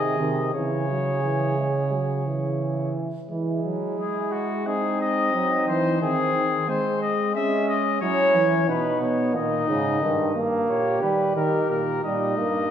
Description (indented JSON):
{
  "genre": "classical, imitative canzona for brass ensemble",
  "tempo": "88 BPM",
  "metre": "4/4",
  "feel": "straight",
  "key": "C# minor",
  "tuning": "A4 = 439 Hz",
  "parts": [
    { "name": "mellow trumpet", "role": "melody", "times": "0.0-12.7 s", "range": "F#4 to E5", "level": "-26 LUFS", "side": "left 4 dB", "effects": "none" },
    { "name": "mellow flugelhorn", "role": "second line", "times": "0.0-12.7 s", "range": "B#3 to G#4", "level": "-28 LUFS", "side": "right 3 dB", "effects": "none" },
    { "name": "warm trombone", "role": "accompaniment", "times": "0.0-12.7 s", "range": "B#2 to C#4", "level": "-26 LUFS", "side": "right 1 dB", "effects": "none" },
    { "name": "warm euphonium", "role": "bass", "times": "0.0-12.7 s", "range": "G2 to G#3", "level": "-27 LUFS", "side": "right 1 dB", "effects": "none" }
  ],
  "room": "wet recital hall reverb, RT60 1.6 s",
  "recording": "recorded in a church or concert hall",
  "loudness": "-21 LUFS",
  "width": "side -9 dB against mid",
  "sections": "0.0-3.3 A section; 3.3-12.7 B section",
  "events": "none",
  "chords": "0.0 G#; 0.5 C#m; 3.3 Eadd9; 4.7 G#; 6.0 G#/D#; 7.4 C#m/G#; 8.7 G#m/B; 10.0 D#/G"
}